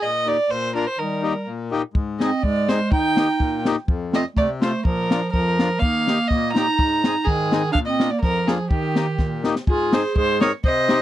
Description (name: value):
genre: alpine folk, alpine dance band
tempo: 124 BPM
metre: 2/4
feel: straight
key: Eb major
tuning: A4 = 440 Hz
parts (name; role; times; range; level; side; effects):
- dark fiddle; melody; 0.0-11.0 s; G4 to Bb5; -23 LUFS; right 2 dB; none
- accordion; accompaniment; 0.0-11.0 s; F2 to Ab4; -26 LUFS; left 5 dB; none
- warm clarinet; second line; 1.0-11.0 s; Eb3 to C5; -23 LUFS; right 3 dB; none
- compact cocktail drum kit; drums; 1.9-11.0 s; hi-hat, kick drum, snare drum; -21 LUFS; left 1 dB; none
room: light reverb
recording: dry, close 1970s-style studio recording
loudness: -18 LUFS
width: side -13 dB against mid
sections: 0.0-9.7 A section; 9.7-11.0 B section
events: drum fill 9.2-9.7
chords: 0.0 Eb/Bb; 0.5 Bb; 1.0 Eb; 1.9 Ab; 2.9 Eb; 3.9 F; 4.8 Bb; 5.8 Eb; 6.8 Ab; 7.7 Bb; 8.7 Eb; 9.7 Ab